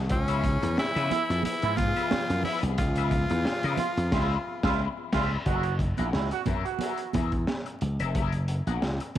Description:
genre	funk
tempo	90 BPM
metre	4/4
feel	straight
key	unclear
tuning	A4 = 440 Hz
part	warm studio string section	sustained chords	0.0-5.4 s	E#3 to G#4	-39 LUFS	left 13 dB	none
part	slap bass	bass	0.0-9.0 s	E#1 to C#3	-28 LUFS	equal	tube saturation
part	raspy tenor saxophone	melody	0.1-4.8 s	C#4 to E#4	-30 LUFS	equal	none
part	electric guitar at the edge of break-up	accompaniment	0.1-9.1 s	E#4 to F#5	-35 LUFS	left 11 dB	wah, spring reverb
part	crunchy breakbeat drum kit	drums	0.1-9.2 s	crash cymbal, hi-hat, kick drum, snare drum	-31 LUFS	equal	none
part	congas	percussion	0.4-9.2 s	none	-36 LUFS	right 7 dB	none
part	bright trombone	second line	1.1-7.1 s	E4 to F#4	-32 LUFS	right 11 dB	none
room	studio reverb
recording	1960s-style stereo with parts hard left and right, vinyl crackle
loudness	-25 LUFS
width	side -12 dB against mid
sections	0.0-5.5 A section; 5.5-9.2 B section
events	band accent 4.1-5.5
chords	0.1 C#7#9; 5.5 F#9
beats	| 0.11 0.78 1.45 2.12 | 2.79 3.46 4.12 4.79 | 5.46 6.13 6.81 7.48 | 8.15 8.82

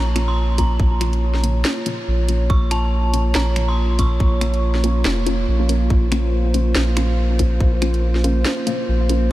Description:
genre	deep dubstep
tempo	141 BPM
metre	4/4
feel	swing 57% on 16ths, half-time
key	Bb minor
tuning	A4 = 440 Hz
part	dark detuned synth bell	melody	0.0-4.8 s	A5 to Db6	-29 LUFS	equal	chorus, dub echo
part	dark analog pad	sustained chords	0.0-9.3 s	Bb3 to Db5	-25 LUFS	right 1 dB	chorus
part	soft dub sub bass	bass	0.0-9.3 s	F1 to Bb1	-18 LUFS	equal	none
part	filtered dub chord stab	stabs	0.2-9.3 s	Bb3 to F4	-27 LUFS	left 2 dB	phaser, dub echo
part	garage drum kit	drums	0.2-9.2 s	finger snaps, hi-hat, snare drum	-26 LUFS	equal	overdrive, studio reverb
part	electronic kick drum	drums	0.6-7.7 s	none	-18 LUFS	equal	overdrive, studio reverb
room	light reverb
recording	none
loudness	-16 LUFS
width	side -16 dB against mid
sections	0.0-9.3 A section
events	none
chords	0.0 Bbm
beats	0.37 | 0.80 1.22 1.65 2.07 | 2.50 2.92 3.35 3.78 | 4.20 4.63 5.05 5.48 | 5.90 6.33 6.75 7.18 | 7.61 8.03 8.46 8.88 | 9.31

